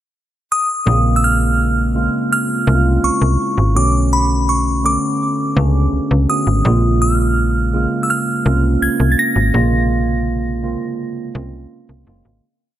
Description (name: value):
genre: contemporary R&B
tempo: 83 BPM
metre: 4/4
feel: straight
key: Bb minor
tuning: A4 = 439 Hz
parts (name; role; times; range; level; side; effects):
- glassy synth bell; melody; 0.5-11.7 s; B5 to Bb6; -19 LUFS; equal; chorus, analog delay
- mellow tine electric piano; accompaniment; 0.9-12.4 s; C3 to A4; -19 LUFS; right 2 dB; lush chorus
- slap-like FM bass; bass; 0.9-12.4 s; Gb1 to C#2; -16 LUFS; equal; none
room: light reverb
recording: none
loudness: -14 LUFS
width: side -12 dB against mid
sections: 0.0-0.9 pickup bar; 0.9-12.4 chorus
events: fade-out 9.5-12.4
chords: 0.0 N.C.; 0.9 Bbm9; 3.8 Bm9; 6.6 Bbm9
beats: 0.14 | 0.86 1.58 2.31 3.03 | 3.75 4.47 5.20 5.92 | 6.64 7.37 8.09 8.81 | 9.53 10.26 10.98 11.70